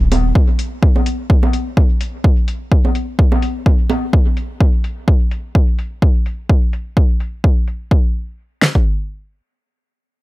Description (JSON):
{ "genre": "dub techno", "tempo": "127 BPM", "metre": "4/4", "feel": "swing 55% on 16ths", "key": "none", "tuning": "none", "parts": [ { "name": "electronic hi-hat", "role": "drums", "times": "0.1-7.8 s", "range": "none", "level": "-32 LUFS", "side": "left 4 dB", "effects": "overdrive, low-pass filter on hats" }, { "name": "congas", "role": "percussion", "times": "0.1-4.0 s", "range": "none", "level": "-23 LUFS", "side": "right 1 dB", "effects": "sidechain pumping on perc, sidechain pumping on toms, dub echo" }, { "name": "deep house drum kit", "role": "drums", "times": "0.4-8.8 s", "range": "kick drum, snare drum", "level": "-13 LUFS", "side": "equal", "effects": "overdrive" } ], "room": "little or no reverb", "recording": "none", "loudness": "-13 LUFS", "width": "side -19 dB against mid", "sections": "0.0-7.9 A section; 7.9-10.2 B section", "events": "none", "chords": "none" }